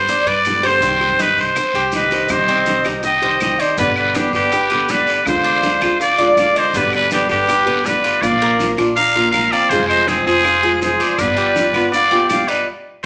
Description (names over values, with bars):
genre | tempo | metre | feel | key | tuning
latin, Cuban son and guajira | 162 BPM | 4/4 | straight | C harmonic minor | A4 = 440 Hz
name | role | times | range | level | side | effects
trumpet with straight mute | melody | 0.0-12.7 s | G4 to F5 | -18 LUFS | equal | none
nylon-string guitar | accompaniment | 0.0-12.7 s | B2 to G4 | -25 LUFS | equal | none
Cuban tres | arpeggios | 0.0-12.7 s | G3 to D5 | -24 LUFS | equal | none
upright bass | bass | 0.0-12.4 s | F1 to G2 | -33 LUFS | equal | none
bongos | percussion | 0.1-12.7 s | none | -31 LUFS | equal | none
guiro | percussion | 0.1-12.7 s | none | -30 LUFS | equal | none
maracas | percussion | 0.1-12.7 s | none | -37 LUFS | equal | none
claves | percussion | 0.5-12.5 s | none | -31 LUFS | equal | none
breathy bright concert flute | second line | 1.9-12.7 s | B4 to Bb5 | -26 LUFS | equal | none
room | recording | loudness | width
wet large studio reverb, RT60 0.9 s | none | -16 LUFS | mono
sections
0.0-2.3 A section; 2.3-13.1 B section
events
band accent 12.7-13.1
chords
0.0 G; 0.8 Cm; 3.8 G; 5.3 Ddim; 6.7 G; 8.2 Bb; 9.7 Fm; 11.2 G7